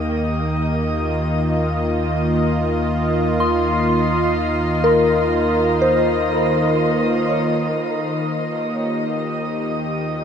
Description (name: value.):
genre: ambient.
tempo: 62 BPM.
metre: 4/4.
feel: straight.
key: Eb major.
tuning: A4 = 440 Hz.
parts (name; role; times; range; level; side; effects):
warm analog pad; sustained chords; 0.0-10.2 s; Eb3 to Eb5; -19 LUFS; equal; chorus.
soft synth bell; arpeggios; 0.0-8.3 s; Bb4 to C6; -22 LUFS; left 1 dB; chorus, diffuse ambient delay.
round analog bass; bass; 0.0-10.2 s; Eb2; -28 LUFS; equal; none.
analog drone; drone; 1.1-10.2 s; Eb3 to Bb3; -27 LUFS; equal; chorus.
room: wet shimmer reverb, RT60 7.9 s.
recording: none.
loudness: -17 LUFS.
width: side -7 dB against mid.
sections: 0.0-7.8 A section; 7.8-10.2 B section.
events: none.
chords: 0.0 Eb.